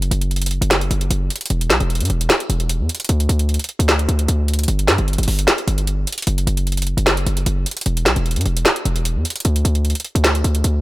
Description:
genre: hip hop, trap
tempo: 151 BPM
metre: 4/4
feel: half-time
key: unclear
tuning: A4 = 439 Hz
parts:
  - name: hard-hitting 808-style bass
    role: bass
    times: 0.0-10.8 s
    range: E1 to G2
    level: -18 LUFS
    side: equal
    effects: none
  - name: trap drum kit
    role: drums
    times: 0.0-10.7 s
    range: handclaps, hi-hat, snare drum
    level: -19 LUFS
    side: equal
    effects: none
room: little or no reverb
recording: none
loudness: -16 LUFS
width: side -18 dB against mid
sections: 0.0-10.8 A section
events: none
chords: none

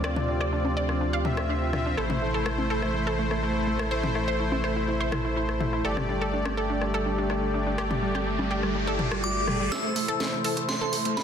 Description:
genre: progressive house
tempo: 124 BPM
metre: 4/4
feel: straight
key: A minor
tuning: A4 = 439 Hz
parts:
  - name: warm analog pad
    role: sustained chords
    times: 0.0-11.2 s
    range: C3 to A4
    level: -33 LUFS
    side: equal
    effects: chorus, vintage 12-bit sampler grit
  - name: analog pluck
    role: arpeggios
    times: 0.0-11.2 s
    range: G3 to F5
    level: -31 LUFS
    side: right 2 dB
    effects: chorus, tape echo
  - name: soft supersaw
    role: stabs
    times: 0.0-11.2 s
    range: A3 to E5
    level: -30 LUFS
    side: left 1 dB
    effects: low-pass filter, tape echo
  - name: saturated sub bass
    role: bass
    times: 0.0-9.7 s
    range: G1 to D2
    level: -31 LUFS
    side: right 1 dB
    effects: none
  - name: punchy analog drum machine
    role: percussion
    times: 0.0-9.6 s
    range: congas, rim click, toms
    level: -33 LUFS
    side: left 3 dB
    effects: soft clipping on snare
  - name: riser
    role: sound effects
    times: 7.3-11.2 s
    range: none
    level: -36 LUFS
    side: right 2 dB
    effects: none
  - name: glassy synth bell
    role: melody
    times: 9.2-11.2 s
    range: B5 to E6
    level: -30 LUFS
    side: equal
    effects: chorus, phaser, tape echo
  - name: house drum kit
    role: drums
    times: 9.7-11.2 s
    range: hi-hat, snare drum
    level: -30 LUFS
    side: right 1 dB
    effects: overdrive
room: moderate digital room reverb, RT60 1.3 s, digital ambience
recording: dense, heavily limited modern master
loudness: -24 LUFS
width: side -8 dB against mid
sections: 0.0-9.7 A section; 9.7-11.2 B section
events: filter sweep on synth arpeggio sound 0.0-9.7; filter sweep on analog synth pad 0.0-9.7; riser 7.3-9.7, 9.7-11.2; build-up 9.7-11.2; drum fill 9.7-11.2; filter sweep on supersaw synth 9.7-11.2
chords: 0.0 Dm7; 2.0 Am; 5.8 Gsus2; 9.7 Am

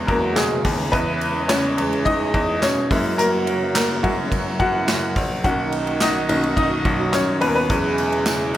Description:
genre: piano-driven pop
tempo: 106 BPM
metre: 4/4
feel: straight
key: B major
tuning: A4 = 442 Hz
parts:
  - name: clear upright piano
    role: accompaniment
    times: 0.0-8.6 s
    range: D#3 to F#5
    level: -21 LUFS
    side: left 1 dB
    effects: none
  - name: warm studio string section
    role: sustained chords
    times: 0.0-8.6 s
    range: B2 to F#4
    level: -29 LUFS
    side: right 1 dB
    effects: none
  - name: bright grand piano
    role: bass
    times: 0.0-8.6 s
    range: A#1 to B2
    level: -25 LUFS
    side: left 1 dB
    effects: none
  - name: warm French horn section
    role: second line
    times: 0.1-8.6 s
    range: D#3 to G#4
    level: -27 LUFS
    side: right 4 dB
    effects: none
  - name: unplugged drum kit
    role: drums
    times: 0.1-8.6 s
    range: handclaps, hi-hat, kick drum, ride cymbal, snare drum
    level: -25 LUFS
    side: equal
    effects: none
  - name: tambourine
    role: percussion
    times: 0.4-8.4 s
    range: none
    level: -33 LUFS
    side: right 5 dB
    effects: none
room: light reverb, small room reverb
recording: none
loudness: -18 LUFS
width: side -13 dB against mid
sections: 0.0-8.6 A section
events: upright piano solo 0.0-8.6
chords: 0.0 E6; 0.9 C#m7/E; 2.9 F#7; 5.4 Bmaj7; 7.7 E6

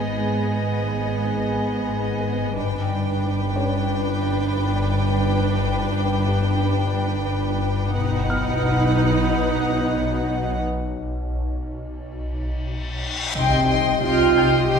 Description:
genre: cinematic, suspense film score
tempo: 89 BPM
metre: 4/4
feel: straight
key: unclear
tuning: A4 = 441 Hz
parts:
  - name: warm chamber violin section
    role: melody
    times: 0.0-14.8 s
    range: Eb5 to C6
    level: -31 LUFS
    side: left 4 dB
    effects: none
  - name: dark chamber violin section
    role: second line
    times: 0.0-14.8 s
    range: Ab4 to G5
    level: -28 LUFS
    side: left 2 dB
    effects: none
  - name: rich studio viola section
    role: accompaniment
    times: 0.0-14.8 s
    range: Cb4 to G4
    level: -25 LUFS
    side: right 5 dB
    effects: none
  - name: glass harmonica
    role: sustained chords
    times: 0.0-14.8 s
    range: G4 to Ab5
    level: -31 LUFS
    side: left 2 dB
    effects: none
  - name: marimba with medium mallets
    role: riff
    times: 0.0-14.8 s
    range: G2 to C4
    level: -26 LUFS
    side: left 5 dB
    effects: none
  - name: dark chamber cello section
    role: bass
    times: 0.0-14.8 s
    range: G2 to C3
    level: -28 LUFS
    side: right 2 dB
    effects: none
  - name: warm chamber double bass section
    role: bass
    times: 0.0-14.8 s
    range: G1 to C2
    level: -30 LUFS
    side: right 4 dB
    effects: none
  - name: swarming drone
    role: drone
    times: 0.0-14.8 s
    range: G1 to C2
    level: -31 LUFS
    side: equal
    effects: built-in reverb
  - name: felt-muted upright piano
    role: texture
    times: 0.0-14.8 s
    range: Db4 to G6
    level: -34 LUFS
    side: equal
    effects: none
  - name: reverse cymbal and impact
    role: sound effects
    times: 12.6-14.8 s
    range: none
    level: -30 LUFS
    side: left 2 dB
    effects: none
  - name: dark French horn section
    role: sustained chords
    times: 13.4-14.8 s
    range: G3 to Eb4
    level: -32 LUFS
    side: left 5 dB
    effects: none
room: wet scoring stage reverb, RT60 1.5 s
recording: minimal, uncompressed stereo recording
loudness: -20 LUFS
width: side -6 dB against mid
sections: 0.0-13.3 A section; 13.3-14.8 B section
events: break 10.6-13.3; reverse cymbal 12.6-13.3; impact 13.3-14.8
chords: 0.0 Abm; 2.6 G; 7.9 B; 13.3 Cm

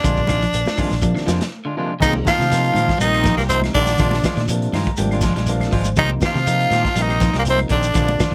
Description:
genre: afrobeat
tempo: 122 BPM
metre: 4/4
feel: straight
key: C minor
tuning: A4 = 440 Hz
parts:
  - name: growling tenor saxophone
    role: melody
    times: 0.0-8.3 s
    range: Bb3 to F4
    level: -22 LUFS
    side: equal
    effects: none
  - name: overdriven tine electric piano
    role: accompaniment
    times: 0.0-8.2 s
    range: C3 to Bb5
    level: -29 LUFS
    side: equal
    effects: none
  - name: electric guitar at the edge of break-up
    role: arpeggios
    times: 0.0-8.3 s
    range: C3 to G3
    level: -28 LUFS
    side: equal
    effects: lush chorus
  - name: electric guitar at the edge of break-up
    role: stabs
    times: 0.0-8.3 s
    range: Eb3 to G4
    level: -29 LUFS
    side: equal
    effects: none
  - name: fingered electric bass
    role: bass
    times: 0.0-8.3 s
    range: Ab1 to C3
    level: -24 LUFS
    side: equal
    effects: none
  - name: crunchy breakbeat drum kit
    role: drums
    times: 0.0-8.3 s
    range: crash cymbal, hi-hat, kick drum, snare drum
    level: -26 LUFS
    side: equal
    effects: none
  - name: claves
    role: percussion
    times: 0.0-8.3 s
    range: none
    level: -36 LUFS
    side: equal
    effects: none
  - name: congas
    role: percussion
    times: 0.0-8.3 s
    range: none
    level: -29 LUFS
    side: equal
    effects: none
  - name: shekere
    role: percussion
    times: 0.0-8.3 s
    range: none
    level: -31 LUFS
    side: equal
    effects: none
  - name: muted trombone section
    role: second line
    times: 2.0-8.3 s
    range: Bb2 to F3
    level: -32 LUFS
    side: equal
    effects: none
  - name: warm trumpet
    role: second line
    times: 2.0-8.3 s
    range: Bb4 to F5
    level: -31 LUFS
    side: equal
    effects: none
room: light reverb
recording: none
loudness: -18 LUFS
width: mono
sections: 0.0-2.0 A section; 2.0-8.3 B section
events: break 1.5-2.0; tine electric piano fill 4.5-6.0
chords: 0.0 Bb7; 2.0 Cm7; 4.0 Bb7; 6.0 Cm7

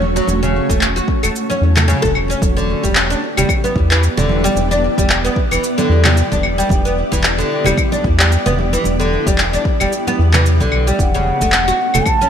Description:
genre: organic downtempo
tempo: 112 BPM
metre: 4/4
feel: swing 57% on 16ths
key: E dorian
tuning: A4 = 440 Hz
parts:
  - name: granular cloud pad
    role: sustained chords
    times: 0.0-12.3 s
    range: A3 to D5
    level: -21 LUFS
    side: equal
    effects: built-in reverb, sidechain pumping
  - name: round analog bass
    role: bass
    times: 0.0-12.0 s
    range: E1 to E2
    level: -17 LUFS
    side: equal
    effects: none
  - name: congas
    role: percussion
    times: 0.0-12.3 s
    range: none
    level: -24 LUFS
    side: right 3 dB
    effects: none
  - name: oud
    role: arpeggios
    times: 0.2-12.3 s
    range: C#3 to A4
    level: -19 LUFS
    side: equal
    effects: digital delay
  - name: electronic shaker, handclaps and claves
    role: drums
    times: 0.2-12.3 s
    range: none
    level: -19 LUFS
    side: left 1 dB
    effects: none
  - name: electronic kick drum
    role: drums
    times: 0.7-12.2 s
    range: none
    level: -19 LUFS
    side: equal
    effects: none
  - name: breathy mellow bansuri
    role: melody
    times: 11.0-12.3 s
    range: F#5 to A5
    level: -16 LUFS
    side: right 1 dB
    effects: none
room: moderate plate reverb, RT60 2.2 s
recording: bright 1980s-style digital production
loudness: -13 LUFS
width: side -8 dB against mid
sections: 0.0-2.4 A section; 2.4-12.3 B section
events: none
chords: 0.0 F#m/E; 2.4 Em7; 11.0 F#m/E

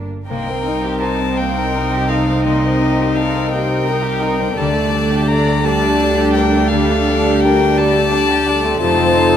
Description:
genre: cinematic, emotional film score for orchestra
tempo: 56 BPM (dotted quarters)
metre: 6/8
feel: rubato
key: unclear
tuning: A4 = 437 Hz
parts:
  - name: warm studio violin section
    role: melody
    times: 0.0-9.4 s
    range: G4 to D5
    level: -24 LUFS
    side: left 2 dB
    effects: none
  - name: warm studio viola section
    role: accompaniment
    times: 0.0-9.4 s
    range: G3 to Eb4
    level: -21 LUFS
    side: right 1 dB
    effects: none
  - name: concert harp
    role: arpeggios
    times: 0.0-9.4 s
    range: F2 to G5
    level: -25 LUFS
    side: left 7 dB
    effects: none
  - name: dark chamber double bass section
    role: bass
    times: 0.0-9.4 s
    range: F1 to D2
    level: -23 LUFS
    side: right 2 dB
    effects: none
  - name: dark studio cello section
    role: bass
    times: 0.0-9.4 s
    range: C2 to F2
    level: -23 LUFS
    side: right 4 dB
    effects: none
  - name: rich violin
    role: melody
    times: 0.3-9.4 s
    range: Eb5 to Bb5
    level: -21 LUFS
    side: left 7 dB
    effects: none
  - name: warm studio violin section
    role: second line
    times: 0.3-9.4 s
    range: G3 to Bb4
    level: -22 LUFS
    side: right 2 dB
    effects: none
  - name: mellow French horn section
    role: sustained chords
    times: 1.4-9.4 s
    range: A3 to Bb4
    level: -20 LUFS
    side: left 1 dB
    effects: none
room: moderate scoring stage reverb, RT60 2.0 s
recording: none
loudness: -13 LUFS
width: side -9 dB against mid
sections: 0.3-9.4 A section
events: none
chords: 0.3 Cm7; 4.6 Dsus4; 8.8 F7

